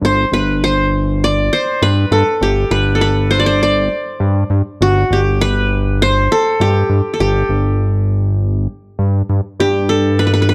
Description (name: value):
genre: Turkish makam ensemble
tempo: 100 BPM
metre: 4/4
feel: straight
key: G makam rast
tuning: A4 = 443 Hz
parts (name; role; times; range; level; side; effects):
- qanun; melody; 0.0-10.5 s; F#4 to D5; -18 LUFS; equal; none
- fat analog bass; bass; 0.0-10.5 s; G1 to G2; -17 LUFS; equal; none
room: light reverb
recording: close, detailed microphones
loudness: -15 LUFS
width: mono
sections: 0.0-9.6 A section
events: none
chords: none